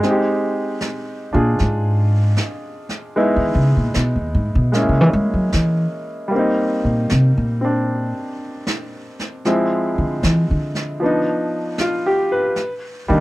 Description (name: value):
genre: jazz ballad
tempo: 77 BPM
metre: 4/4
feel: swing 66% on 8ths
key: C minor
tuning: A4 = 440 Hz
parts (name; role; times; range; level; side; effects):
- clear upright piano; accompaniment; 0.0-13.2 s; F3 to B4; -20 LUFS; equal; none
- brushed snare drum and snare drum; drums; 0.0-13.2 s; none; -28 LUFS; right 1 dB; none
- upright bass; bass; 1.3-13.2 s; Eb2 to G#3; -17 LUFS; equal; none
room: light reverb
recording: none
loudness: -16 LUFS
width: side -18 dB against mid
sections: 0.0-13.2 A section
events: upright bass solo 0.0-13.2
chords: 0.0 Fm9; 3.2 Dbm7 (rootless); 4.7 F#9 (rootless); 6.3 Cm9/Bb; 9.4 Dm7b5; 11.0 G7b13; 12.6 Cm7 (rootless)